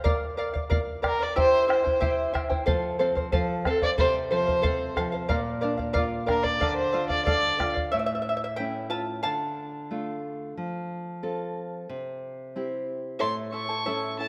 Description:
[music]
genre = andean folk, Andean ensemble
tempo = 91 BPM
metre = 2/4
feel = straight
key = unclear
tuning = A4 = 440 Hz
[part]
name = charango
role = accompaniment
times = 0.0-10.2, 13.2-14.3 s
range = E4 to A5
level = -31 LUFS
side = equal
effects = none
[part]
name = bombo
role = percussion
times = 0.1-7.9 s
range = none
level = -32 LUFS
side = equal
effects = none
[part]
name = dark violin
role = melody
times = 1.1-7.7, 13.2-14.3 s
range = A4 to C#6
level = -27 LUFS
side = equal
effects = none
[part]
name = nylon-string guitar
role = accompaniment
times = 2.7-14.3 s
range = A2 to A4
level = -34 LUFS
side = equal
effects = none
[sound]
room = moderate concert hall reverb, RT60 2.4 s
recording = none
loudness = -27 LUFS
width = mono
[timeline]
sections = 0.0-7.9 A section; 7.9-13.2 B section; 13.2-14.3 C section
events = charango solo 7.9-13.2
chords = 0.1 Bb; 1.4 C; 2.7 F; 5.3 Bb; 6.6 Dm; 7.9 A; 9.2 Dm; 10.6 F; 11.9 C; 13.2 A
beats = | 0.05 0.71 | 1.36 2.02 | 2.67 3.33 | 3.98 4.64 | 5.29 5.95 | 6.61 7.27 | 7.93 8.59 | 9.25 9.91 | 10.57 11.23 | 11.89 12.55 | 13.21 13.87

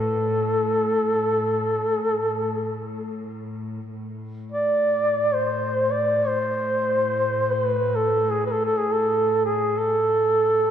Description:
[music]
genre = caucasian folk, Caucasian lament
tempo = free time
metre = none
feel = none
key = A harmonic minor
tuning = A4 = 440 Hz
[part]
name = dark duduk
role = melody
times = 0.0-10.7 s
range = G#4 to D5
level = -21 LUFS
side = equal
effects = tape echo
[part]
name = rich chamber string section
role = drone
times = 0.0-10.7 s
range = A2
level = -30 LUFS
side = equal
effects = none
[sound]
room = wet lush hall reverb, RT60 2.2 s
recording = dreamy mix soaked in reverb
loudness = -20 LUFS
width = side -9 dB against mid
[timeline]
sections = 0.0-3.9 A section; 3.9-10.7 A section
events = none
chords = none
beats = free time

